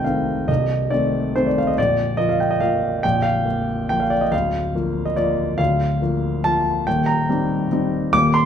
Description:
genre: classical, piano waltz.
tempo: 141 BPM.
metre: 3/4.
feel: uneven beats, rubato.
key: Bb major.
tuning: A4 = 435 Hz.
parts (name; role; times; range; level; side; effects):
warm grand piano; solo; 0.0-8.5 s; Bb0 to D6; -18 LUFS; equal; none.
room: moderate recital hall reverb, RT60 1.4 s.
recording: close, detailed microphones.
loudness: -18 LUFS.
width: side -8 dB against mid.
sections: 0.0-8.5 A section.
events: none.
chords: 0.0 Adim/C; 1.8 Bb; 4.3 Bb/D; 6.9 Cm7/Eb.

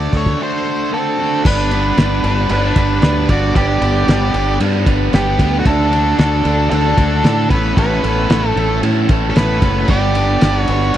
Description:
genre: classic rock.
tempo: 114 BPM.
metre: 4/4.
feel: straight.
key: unclear.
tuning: A4 = 440 Hz.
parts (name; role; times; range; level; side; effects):
octave-fuzz lead guitar; melody; 0.0-11.0 s; F#4 to D5; -20 LUFS; equal; distortion, slapback echo.
distorted electric guitar; riff; 0.0-11.0 s; A2 to B4; -22 LUFS; left 10 dB; distortion.
distorted electric guitar; riff; 0.0-11.0 s; A2 to B4; -21 LUFS; right 11 dB; distortion.
fingered electric bass; bass; 0.0-10.9 s; F#1 to A2; -18 LUFS; equal; none.
cloth-damped thuddy drum kit; drums; 0.1-11.0 s; crash cymbal, hi-hat, kick drum, ride cymbal, snare drum; -18 LUFS; equal; none.
octave-fuzz lead guitar; second line; 0.9-11.0 s; A3 to G4; -23 LUFS; right 2 dB; distortion.
tonewheel organ; sustained chords; 1.5-11.0 s; A3 to A4; -32 LUFS; equal; none.
room: little or no reverb.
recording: dry, close 1970s-style studio recording.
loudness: -12 LUFS.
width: side -12 dB against mid.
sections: 0.0-1.4 A section; 1.4-11.0 B section.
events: none.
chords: 0.0 D; 1.4 Gadd9; 5.7 D; 7.5 Aadd9; 9.9 Gadd9.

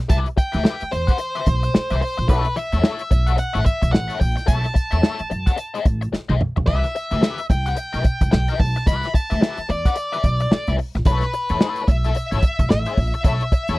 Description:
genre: funk.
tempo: 110 BPM.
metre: 4/4.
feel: swing 60% on 16ths.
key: unclear.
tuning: A4 = 439 Hz.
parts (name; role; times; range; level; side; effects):
warm soul drum kit; drums; 0.0-13.8 s; hi-hat, kick drum, snare drum, splash cymbal, toms; -18 LUFS; equal; none.
octave-fuzz lead guitar; melody; 0.1-13.8 s; B4 to B5; -26 LUFS; equal; distortion.
biting overdriven guitar; accompaniment; 0.1-13.8 s; E4 to F#5; -27 LUFS; left 6 dB; wah, tremolo.
upright bass; bass; 0.1-13.8 s; A1 to F#2; -22 LUFS; equal; none.
room: little or no reverb.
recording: dry, close 1970s-style studio recording.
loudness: -18 LUFS.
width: side -20 dB against mid.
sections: 0.0-13.8 A section.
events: drum fill 6.1-6.7.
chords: 0.0 Cmaj7; 2.3 B9sus4; 6.7 Cmaj7; 11.1 B9sus4.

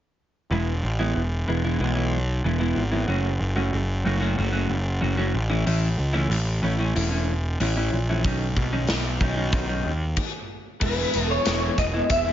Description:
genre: quiet-loud alternative rock.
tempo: 93 BPM.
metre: 4/4.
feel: straight.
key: E major.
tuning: A4 = 441 Hz.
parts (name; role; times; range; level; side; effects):
clean electric guitar; arpeggios; 0.5-12.3 s; D#3 to F#4; -26 LUFS; equal; lush chorus.
fuzz picked electric bass; bass; 0.5-12.3 s; E1 to D#2; -24 LUFS; equal; overdrive.
big rock drum kit; drums; 5.7-12.3 s; crash cymbal, hi-hat, kick drum, snare drum; -28 LUFS; equal; none.
electric guitar through a small old amp; melody; 10.8-12.3 s; B4 to E5; -24 LUFS; left 1 dB; ensemble chorus, tape echo.
room: light reverb.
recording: nothing above 7.5 kHz.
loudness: -22 LUFS.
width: side -11 dB against mid.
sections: 0.5-10.8 A section; 10.8-12.3 B section.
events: stop 10.2-10.8.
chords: 0.5 E; 3.1 F#m; 5.3 A; 8.2 Badd9; 10.8 E.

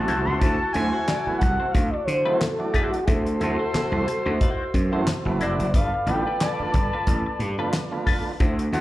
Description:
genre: funk.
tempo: 90 BPM.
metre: 4/4.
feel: swing 56% on 16ths.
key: D mixolydian.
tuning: A4 = 443 Hz.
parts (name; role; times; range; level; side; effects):
expressive synth lead; melody; 0.0-8.8 s; F#4 to C6; -26 LUFS; equal; chorus, slapback echo.
warm horn section; second line; 0.0-8.0 s; E3 to D5; -31 LUFS; equal; slapback echo.
tonewheel organ; stabs; 0.0-8.8 s; D3 to D4; -30 LUFS; right 3 dB; slapback echo.
gritty slap bass; bass; 0.0-8.8 s; F1 to D3; -25 LUFS; equal; overdrive.
clean electric guitar; accompaniment; 0.1-8.8 s; E4 to D5; -32 LUFS; left 4 dB; wah, slapback echo.
damped 70s drum kit; drums; 0.1-8.8 s; handclaps, hi-hat, kick drum, snare drum; -24 LUFS; equal; none.
room: light reverb.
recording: live gig heard through the venue's PA, club reverb.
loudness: -21 LUFS.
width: side -16 dB against mid.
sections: 0.0-8.8 A section.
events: analog synth lead solo 0.0-8.8.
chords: 0.0 D9; 5.7 G9.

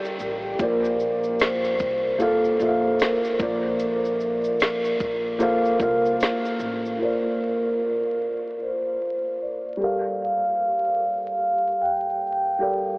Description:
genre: lo-fi hip hop.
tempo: 75 BPM.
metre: 4/4.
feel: swing 62% on 16ths.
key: Bb major.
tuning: A4 = 440 Hz.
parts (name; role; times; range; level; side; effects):
felt-muted upright piano; accompaniment; 0.0-13.0 s; G3 to G5; -26 LUFS; equal; low-pass filter.
garage drum kit; drums; 0.0-7.0 s; finger snaps, hi-hat, kick drum, shaker, snare drum; -30 LUFS; equal; vintage 12-bit sampler grit.
upright bass; bass; 0.2-7.0 s; A1 to C2; -38 LUFS; equal; none.
vibraphone with soft mallets; melody; 0.6-13.0 s; A4 to G5; -23 LUFS; equal; low-pass filter.
room: wet huge ambient reverb, RT60 9.3 s.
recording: dreamy mix soaked in reverb, vinyl crackle, AM radio sound.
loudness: -21 LUFS.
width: side -25 dB against mid.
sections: 0.0-7.0 A section; 7.0-13.0 B section.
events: none.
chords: 0.0 Gm9; 0.6 Bbmaj9; 7.0 Bbadd9; 9.8 Gm9.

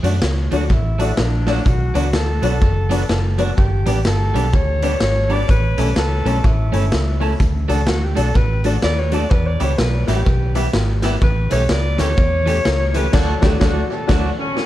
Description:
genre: ska.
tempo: 126 BPM.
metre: 4/4.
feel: swing 61% on 8ths.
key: D major.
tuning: A4 = 436 Hz.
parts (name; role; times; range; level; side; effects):
electric guitar at the edge of break-up; accompaniment; 0.0-14.3 s; E3 to A4; -26 LUFS; right 4 dB; spring reverb.
honky-tonk upright piano; stabs; 0.0-14.3 s; C#4 to E5; -26 LUFS; left 5 dB; tape echo.
vintage muted fingered electric bass; bass; 0.0-14.3 s; F#1 to F#2; -19 LUFS; equal; none.
raw garage drum kit; drums; 0.0-14.7 s; crash cymbal, hi-hat, kick drum, snare drum; -19 LUFS; equal; tape echo.
breathy alto saxophone; melody; 0.6-14.1 s; D4 to D5; -24 LUFS; left 1 dB; tape echo.
mellow horn section; melody; 14.4-14.7 s; C#4; -25 LUFS; left 1 dB; tape echo.
room: light reverb.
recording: dark, warm production.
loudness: -15 LUFS.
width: side -14 dB against mid.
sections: 0.0-14.7 A section.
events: alto saxophone solo 0.0-14.7; band accent 13.1-14.7.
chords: 0.0 D; 1.7 Bm; 3.6 G; 5.5 A; 7.4 D; 9.3 Em; 11.2 A7; 13.1 D.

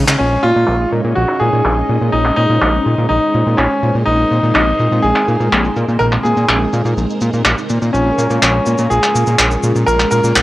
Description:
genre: italo disco.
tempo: 124 BPM.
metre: 4/4.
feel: straight.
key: unclear.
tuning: A4 = 440 Hz.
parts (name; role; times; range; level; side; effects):
string machine, full ensemble; sustained chords; 0.0-10.4 s; Ab3 to Eb5; -21 LUFS; equal; phaser, ensemble chorus, vintage 12-bit sampler grit.
fat analog bass; bass; 0.0-10.4 s; Bb1 to Db3; -16 LUFS; equal; none.
damped 70s drum kit; drums; 0.1-10.4 s; cabasa, handclaps, hi-hat; -16 LUFS; equal; low-pass filter on hats, small room ambience, low-pass filter on perc, low-pass filter on snare, low-pass filter on room.
bright concert grand piano; melody; 0.2-10.4 s; Db4 to Bb4; -16 LUFS; equal; tape echo.
room: studio reverb.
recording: dry, gritty hardware recording.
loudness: -12 LUFS.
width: side -16 dB against mid.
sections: 0.2-10.4 A section.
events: drum fill 0.0; band accent 0.1; filter sweep on drum 0.2-10.4.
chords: 0.2 Dbsus2/Bb; 4.1 Abadd9/Bb; 7.9 Bbm7.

